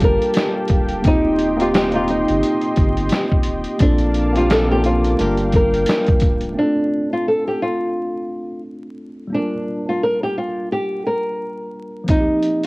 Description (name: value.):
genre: lo-fi hip hop.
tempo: 87 BPM.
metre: 4/4.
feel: swing 57% on 16ths.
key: G minor.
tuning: A4 = 440 Hz.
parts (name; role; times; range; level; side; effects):
nylon-string guitar; melody; 0.0-12.7 s; D4 to Bb4; -19 LUFS; equal; low-pass filter, cassette tape.
tine electric piano; accompaniment; 0.0-12.7 s; F3 to Bb4; -23 LUFS; equal; medium stereo tremolo, cassette tape, low-pass filter.
warm analog pad; sustained chords; 0.0-6.6 s; Bb3 to D6; -26 LUFS; equal; chorus, low-pass filter, cassette tape.
soft dub sub bass; bass; 0.0-6.5 s; C#1 to Bb1; -22 LUFS; equal; none.
trip hop sampler-style drum kit; drums; 0.0-6.5, 12.1-12.7 s; hi-hat, kick drum, snare drum; -18 LUFS; equal; cassette tape.
room: light reverb.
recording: home recording on cassette, vinyl crackle.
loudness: -16 LUFS.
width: side -24 dB against mid.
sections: 0.0-6.6 A section; 6.6-12.7 B section.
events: none.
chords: 0.0 Gm9; 1.0 Eb6; 3.8 Bbmaj7; 5.2 Gm7; 6.6 Dm7; 9.3 Gm7; 12.1 Eb6.